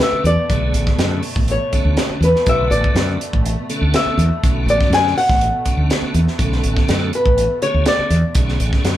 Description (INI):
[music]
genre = electric jazz fusion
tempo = 122 BPM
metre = 4/4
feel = straight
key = B dorian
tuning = A4 = 440 Hz
[part]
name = flamenco guitar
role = melody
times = 0.0-8.3 s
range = B4 to G#5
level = -18 LUFS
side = left 1 dB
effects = none
[part]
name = tonewheel organ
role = accompaniment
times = 0.0-9.0 s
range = C#3 to A4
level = -25 LUFS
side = equal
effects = slow rotary speaker, overdrive, chorus vibrato
[part]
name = dark studio string section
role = sustained chords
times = 0.0-9.0 s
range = B2 to B3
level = -29 LUFS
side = right 2 dB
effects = none
[part]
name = tight funk drum kit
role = drums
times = 0.0-9.0 s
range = hi-hat, kick drum, snare drum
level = -20 LUFS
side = equal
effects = none
[part]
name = mellow fretless electric bass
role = bass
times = 0.1-9.0 s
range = A1 to F#2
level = -18 LUFS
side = equal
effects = none
[sound]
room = moderate studio reverb, RT60 0.6 s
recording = band playing live in one room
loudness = -14 LUFS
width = side -13 dB against mid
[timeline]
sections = 0.0-9.0 A section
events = nylon-string guitar solo 0.0-9.0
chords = 0.0 Bm9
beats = 0.01 | 0.50 0.99 1.49 1.98 | 2.47 2.96 3.45 3.94 | 4.43 4.92 5.41 5.90 | 6.39 6.88 7.38 7.87 | 8.36 8.85